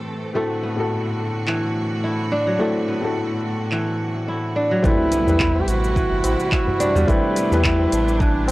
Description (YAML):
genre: organic downtempo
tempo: 107 BPM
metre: 4/4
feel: swing 55% on 16ths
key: A dorian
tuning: A4 = 440 Hz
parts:
  - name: felt-muted upright piano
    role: accompaniment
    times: 0.0-8.5 s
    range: A2 to B4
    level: -25 LUFS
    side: left 2 dB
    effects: sidechain pumping, low-pass filter, tape echo
  - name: bright studio string section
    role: sustained chords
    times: 0.0-8.5 s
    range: A2 to A4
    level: -29 LUFS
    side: right 1 dB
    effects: sidechain pumping
  - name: kora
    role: arpeggios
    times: 0.4-8.5 s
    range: E3 to E4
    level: -24 LUFS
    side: right 1 dB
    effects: tape echo
  - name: organic electronic drum kit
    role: drums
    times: 1.5-8.5 s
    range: handclaps, hi-hat, shaker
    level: -26 LUFS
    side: equal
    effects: none
  - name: warm duduk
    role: melody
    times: 4.8-8.5 s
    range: D4 to G4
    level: -22 LUFS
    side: right 1 dB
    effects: tape echo
  - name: round analog bass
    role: bass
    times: 4.8-8.5 s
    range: G1 to E2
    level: -21 LUFS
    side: equal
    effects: transformer saturation
  - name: electronic kick drum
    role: drums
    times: 4.8-8.3 s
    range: none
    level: -22 LUFS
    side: equal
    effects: none
  - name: impact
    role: sound effects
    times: 4.8-7.1 s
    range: none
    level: -31 LUFS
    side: equal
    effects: none
  - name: tabla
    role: percussion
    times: 5.6-8.5 s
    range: none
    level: -30 LUFS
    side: left 1 dB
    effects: none
room: light reverb, small room ambience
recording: dry, gritty hardware recording, cassette tape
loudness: -18 LUFS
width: side -18 dB against mid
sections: 0.0-4.8 A section; 4.8-8.5 B section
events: filter sweep on felt piano 0.0-4.8; impact 4.8-7.1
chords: 0.4 D7/A; 4.8 Am7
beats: | 0.35 0.92 1.48 2.04 | 2.60 3.16 3.72 4.28 | 4.84 5.40 5.96 6.52 | 7.08 7.64 8.21